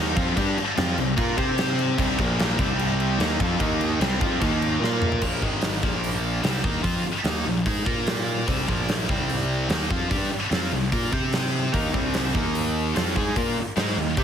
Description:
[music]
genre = hard rock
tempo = 148 BPM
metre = 4/4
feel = straight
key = C minor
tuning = A4 = 440 Hz
[part]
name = crunchy overdriven guitar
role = riff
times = 0.0-5.2, 11.7-14.2 s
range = Bb2 to C5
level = -27 LUFS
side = equal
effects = spring reverb
[part]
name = heavy high-gain guitar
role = riff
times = 0.0-14.2 s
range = Ab2 to C5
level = -27 LUFS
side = left 1 dB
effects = distortion
[part]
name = fuzz picked electric bass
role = bass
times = 0.0-14.2 s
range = Ab1 to C3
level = -27 LUFS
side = equal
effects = overdrive
[part]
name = gated 80s drum kit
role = drums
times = 0.2-14.2 s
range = crash cymbal, hi-hat, kick drum, snare drum, toms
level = -26 LUFS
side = equal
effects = none
[sound]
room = light reverb, small room ambience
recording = heavily compressed radio sound, multiband compression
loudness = -21 LUFS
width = side -8 dB against mid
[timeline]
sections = 0.0-5.2 A section; 5.2-14.2 B section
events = drum fill 4.8-5.2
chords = 0.0 Cm; 2.2 Bb5; 2.6 Cm; 3.6 Eb5; 4.0 C5; 4.4 Eb5; 4.8 Bb5; 5.4 Ab5; 5.8 Bb5; 8.5 C5; 8.7 Bb5; 9.1 Cm; 11.7 Eb5; 11.9 C5; 12.3 Eb5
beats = | 0.37 0.77 1.18 1.58 | 1.99 2.39 2.80 3.20 | 3.61 4.01 4.42 4.82 | 5.23 5.63 6.04 6.45 | 6.85 7.26 7.67 8.07 | 8.48 8.89 9.29 9.70 | 10.11 10.52 10.92 11.33 | 11.73 12.14 12.55 12.96 | 13.36 13.77 14.18

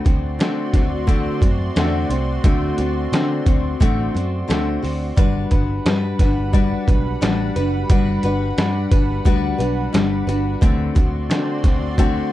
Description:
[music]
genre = indie pop, bedroom pop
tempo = 88 BPM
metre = 4/4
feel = straight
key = G major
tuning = A4 = 439 Hz
[part]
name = picked steel-string acoustic guitar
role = accompaniment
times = 0.0-12.3 s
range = D3 to B4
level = -22 LUFS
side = left 3 dB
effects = wide subtle chorus, warbly pitch drift
[part]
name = lush unison pad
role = sustained chords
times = 0.0-12.3 s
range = G3 to C6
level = -29 LUFS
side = right 3 dB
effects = chorus
[part]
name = vintage muted picked electric bass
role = bass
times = 0.1-12.2 s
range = F#1 to D3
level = -23 LUFS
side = equal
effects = none
[part]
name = trip hop sampler-style drum kit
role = drums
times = 0.1-12.1 s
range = hi-hat, kick drum, snare drum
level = -18 LUFS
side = equal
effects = vintage 12-bit sampler grit
[sound]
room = little or no reverb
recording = dark, warm production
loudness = -16 LUFS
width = side -14 dB against mid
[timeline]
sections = 0.0-12.3 A section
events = none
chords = 0.0 D7; 5.2 Gmaj7; 10.6 D7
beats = 0.40 1.08 1.76 | 2.45 3.13 3.81 4.49 | 5.17 5.85 6.54 7.22 | 7.90 8.58 9.26 9.94 | 10.62 11.30 11.99

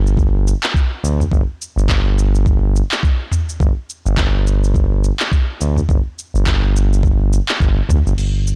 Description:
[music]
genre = organic downtempo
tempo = 105 BPM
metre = 4/4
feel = swing 58% on 16ths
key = unclear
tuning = A4 = 440 Hz
[part]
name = smooth synth bass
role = bass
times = 0.0-8.6 s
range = G1 to D2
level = -17 LUFS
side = equal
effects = sidechain pumping
[part]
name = afro-pop drum kit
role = drums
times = 0.1-8.6 s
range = crash cymbal, handclaps, shaker, toms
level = -24 LUFS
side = equal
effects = none
[part]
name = electronic kick drum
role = drums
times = 0.2-7.7 s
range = none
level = -18 LUFS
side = equal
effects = none
[sound]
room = little or no reverb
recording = blown-out, overdriven recording, overdrive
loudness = -17 LUFS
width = mono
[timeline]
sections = 0.0-8.2 A section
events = none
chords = none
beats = 0.17 0.75 | 1.32 1.89 2.46 3.03 | 3.60 4.17 4.75 5.32 | 5.89 6.46 7.03 7.60 | 8.18

